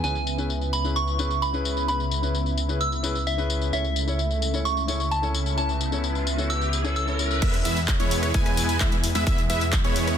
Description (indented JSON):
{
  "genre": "EDM, festival progressive house",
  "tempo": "130 BPM",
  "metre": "4/4",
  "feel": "straight",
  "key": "E major",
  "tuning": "A4 = 440 Hz",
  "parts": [
    { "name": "soft synth bell", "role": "melody", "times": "0.0-7.1 s", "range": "E5 to E6", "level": "-29 LUFS", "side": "right 2 dB", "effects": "chorus, phaser, ping-pong delay" },
    { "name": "dark grand piano", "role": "accompaniment", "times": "0.0-7.4 s", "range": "C#4 to C#5", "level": "-33 LUFS", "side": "left 5 dB", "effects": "sidechain pumping, ping-pong delay" },
    { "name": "lush unison pad", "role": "sustained chords", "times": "0.0-10.2 s", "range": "B2 to E4", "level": "-33 LUFS", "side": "equal", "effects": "chorus, sidechain pumping" },
    { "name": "detuned saw bass", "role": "bass", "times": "0.0-10.2 s", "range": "C#2 to E2", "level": "-27 LUFS", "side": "equal", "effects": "sidechain pumping" },
    { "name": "big-room dance drum kit", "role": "drums", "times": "0.0-10.2 s", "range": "crash cymbal, handclaps, hi-hat, rim click, tambourine", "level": "-31 LUFS", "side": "left 4 dB", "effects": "overdrive, low-pass filter on perc, low-pass filter on hats, low-pass filter on cymbals, low-pass filter on snare" },
    { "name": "riser", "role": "sound effects", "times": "5.1-7.4 s", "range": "none", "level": "-34 LUFS", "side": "right 1 dB", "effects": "none" },
    { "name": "wide unison lead", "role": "arpeggios", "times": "7.4-10.2 s", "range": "C#5 to G#5", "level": "-29 LUFS", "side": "equal", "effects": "sidechain pumping, ping-pong delay" },
    { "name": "dense compressed supersaw", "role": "riff", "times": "7.4-10.2 s", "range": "G#3 to G#5", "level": "-28 LUFS", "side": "right 1 dB", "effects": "sidechain pumping, ping-pong delay" },
    { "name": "electronic kick drum", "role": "drums", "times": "7.4-9.8 s", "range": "none", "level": "-24 LUFS", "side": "equal", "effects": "overdrive" }
  ],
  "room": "light reverb",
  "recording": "dense, heavily limited modern master",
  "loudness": "-22 LUFS",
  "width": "side -8 dB against mid",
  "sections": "0.0-7.4 A section; 7.4-10.2 B section",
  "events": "filter sweep on analog synth pad 0.0-7.4; riser 5.1-7.4; drop 7.4-10.2",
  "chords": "0.0 C#m7; 3.7 A/C#; 7.4 E"
}